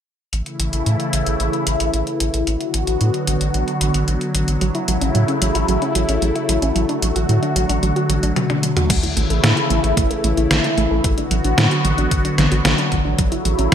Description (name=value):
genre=synthwave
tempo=112 BPM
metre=4/4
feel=straight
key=A major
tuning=A4 = 440 Hz
part: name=phased analog pad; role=sustained chords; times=0.3-13.7 s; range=C#3 to F#4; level=-20 LUFS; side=left 1 dB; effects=phaser, chorus, sidechain pumping
part: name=round analog bass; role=bass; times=0.3-13.7 s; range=A1 to A2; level=-20 LUFS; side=equal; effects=sidechain pumping
part: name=detuned 8-bit digital drum machine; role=drums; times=0.3-13.7 s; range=crash cymbal, hi-hat, snare drum, toms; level=-21 LUFS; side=equal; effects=none
part: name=soft round pluck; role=arpeggios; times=4.6-13.7 s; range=F#3 to A4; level=-24 LUFS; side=right 2 dB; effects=chorus, digital delay
part: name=electronic kick drum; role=drums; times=8.9-13.3 s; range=none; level=-21 LUFS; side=equal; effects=none
room=wet lush hall reverb, RT60 1.5 s, digital ambience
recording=bright 1980s-style digital production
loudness=-16 LUFS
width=side -9 dB against mid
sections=0.3-8.9 A section; 8.9-13.7 B section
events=drum fill 8.4-8.9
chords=0.3 A; 2.5 Bm/A; 4.6 F#m7/A; 6.8 D/A; 8.9 A; 11.0 Bm/A; 13.2 F#m7/A